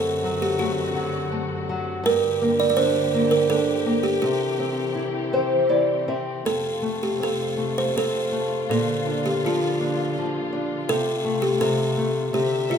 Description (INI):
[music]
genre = children's music, lullaby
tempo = 82 BPM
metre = 3/4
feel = rubato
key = F major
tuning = A4 = 441 Hz
[part]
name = buzzing kalimba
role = melody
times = 0.0-12.8 s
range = F4 to D5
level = -23 LUFS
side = right 2 dB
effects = none
[part]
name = nylon-string guitar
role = accompaniment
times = 0.0-12.8 s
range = F2 to E5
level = -25 LUFS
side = left 1 dB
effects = none
[part]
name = muted studio string section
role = sustained chords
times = 0.0-12.8 s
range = F#2 to E5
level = -30 LUFS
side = left 2 dB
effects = none
[sound]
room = light reverb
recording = minimal, uncompressed stereo recording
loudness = -21 LUFS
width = side -7 dB against mid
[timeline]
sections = 0.0-12.8 A section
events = nylon-string guitar fill 5.0-6.5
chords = 0.0 D7/F#; 2.0 Gm; 4.2 C; 6.5 F; 8.7 Bb; 10.9 F/C